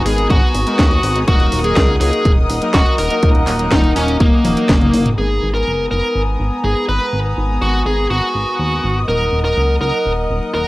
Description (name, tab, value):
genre	italo disco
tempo	123 BPM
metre	4/4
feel	straight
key	unclear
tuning	A4 = 440 Hz
part	dark chamber string section	sustained chords	0.0-10.7 s	Cb4 to Eb6	-22 LUFS	left 1 dB	none
part	chorused synth bass	bass	0.0-10.7 s	Eb1 to Eb2	-19 LUFS	equal	tube saturation
part	dark smooth lead guitar	melody	0.1-10.7 s	Bb3 to Cb5	-18 LUFS	equal	overdrive, tape echo
part	analog synth brass	stabs	0.1-10.7 s	Gb3 to Eb5	-25 LUFS	left 1 dB	chorus
part	house drum kit	drums	0.1-5.2 s	handclaps, hi-hat, snare drum, toms	-20 LUFS	equal	overdrive
part	electronic kick drum	drums	0.3-4.8 s	none	-14 LUFS	equal	overdrive
room	digital ambience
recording	dry, gritty hardware recording, vinyl crackle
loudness	-13 LUFS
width	side -18 dB against mid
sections	0.0-5.2 A section; 5.2-10.7 B section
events	drum fill 4.4-5.2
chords	0.0 Abmadd9; 1.3 Ebm; 5.2 Abmadd9; 9.1 Ebm